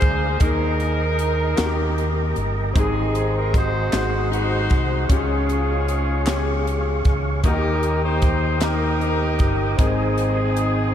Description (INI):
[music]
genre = slow gospel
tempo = 51 BPM (dotted quarters)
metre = 6/8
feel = straight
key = Ab major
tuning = A4 = 440 Hz
[part]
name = clear horn section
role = melody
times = 0.0-10.9 s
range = C4 to C5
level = -24 LUFS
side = equal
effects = diffuse ambient delay
[part]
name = bright concert grand piano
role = accompaniment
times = 0.0-10.9 s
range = Ab2 to C5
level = -27 LUFS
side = left 3 dB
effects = none
[part]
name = tonewheel organ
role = sustained chords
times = 0.0-10.9 s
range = G4 to Eb6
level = -29 LUFS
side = right 2 dB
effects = slow rotary speaker, chorus vibrato
[part]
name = fingered electric bass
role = bass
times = 0.0-10.9 s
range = G1 to Eb2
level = -23 LUFS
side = equal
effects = none
[part]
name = crisp fusion drum kit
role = drums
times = 0.0-10.8 s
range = hi-hat, kick drum, snare drum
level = -23 LUFS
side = equal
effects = none
[part]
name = group handclap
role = percussion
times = 1.6-9.0 s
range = none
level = -40 LUFS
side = right 3 dB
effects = none
[sound]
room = moderate huge ambient reverb, RT60 7.3 s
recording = dreamy mix soaked in reverb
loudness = -18 LUFS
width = side -10 dB against mid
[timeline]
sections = 0.0-10.9 A section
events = none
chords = 0.4 Ebsus4; 1.6 Eb; 2.8 Ab7; 5.1 Db; 7.4 Eb; 9.8 Ab